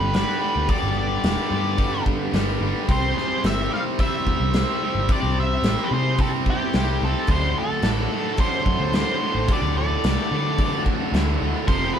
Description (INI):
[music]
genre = blues rock power trio and southern rock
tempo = 109 BPM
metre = 4/4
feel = straight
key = unclear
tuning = A4 = 439 Hz
[part]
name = octave-fuzz lead guitar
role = melody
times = 0.0-12.0 s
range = G4 to F5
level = -26 LUFS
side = equal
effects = distortion
[part]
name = biting lead guitar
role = second line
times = 0.0-12.0 s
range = E4 to D5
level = -35 LUFS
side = right 2 dB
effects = overdrive
[part]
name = overdriven tonewheel organ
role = sustained chords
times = 0.0-12.0 s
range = A3 to C5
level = -36 LUFS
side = right 2 dB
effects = none
[part]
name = tight distorted guitar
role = riff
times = 0.0-12.0 s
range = D2 to C4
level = -26 LUFS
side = equal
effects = distortion
[part]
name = vintage muted picked electric bass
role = bass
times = 0.0-11.9 s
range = E1 to D3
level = -25 LUFS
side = equal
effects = none
[part]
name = big rock drum kit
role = drums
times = 0.1-11.8 s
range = hi-hat, kick drum, snare drum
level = -24 LUFS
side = equal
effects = none
[sound]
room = moderate small room reverb, RT60 0.5 s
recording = band playing live in one room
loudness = -19 LUFS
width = side -8 dB against mid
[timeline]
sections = 0.0-12.0 A section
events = none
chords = 0.0 G; 2.9 C; 7.3 D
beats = 0.14 | 0.69 1.25 1.79 2.35 | 2.90 3.45 4.00 4.55 | 5.10 5.65 6.20 6.75 | 7.29 7.84 8.39 8.94 | 9.49 10.04 10.59 11.13 | 11.68